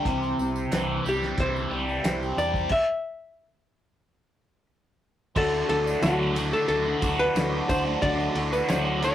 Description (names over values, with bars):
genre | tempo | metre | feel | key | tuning
folk rock and heartland rock | 90 BPM | 4/4 | straight | D mixolydian | A4 = 439 Hz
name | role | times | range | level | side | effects
picked acoustic archtop guitar | accompaniment | 0.0-9.1 s | C3 to C5 | -33 LUFS | left 3 dB | none
rich chamber string section | sustained chords | 0.0-9.1 s | G3 to G4 | -45 LUFS | right 1 dB | none
biting overdriven guitar | riff | 0.0-9.1 s | C3 to G4 | -27 LUFS | right 1 dB | phaser
fingered electric bass | bass | 0.1-9.1 s | C2 to E2 | -32 LUFS | equal | none
cloth-damped thuddy drum kit | drums | 0.1-9.1 s | crash cymbal, hi-hat, kick drum, ride cymbal, snare drum | -30 LUFS | right 1 dB | none
tambourine | percussion | 0.1-9.1 s | none | -46 LUFS | right 5 dB | none
archtop guitar, miked and amplified | melody | 1.1-9.1 s | F#4 to E5 | -26 LUFS | left 1 dB | slapback echo
room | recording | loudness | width
moderate studio reverb, RT60 0.6 s | rough rehearsal-room recording, tube saturation | -23 LUFS | side -11 dB against mid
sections
0.0-5.4 A section; 5.4-9.1 B section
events
stop 2.7-5.4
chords
0.1 C; 5.4 Dadd9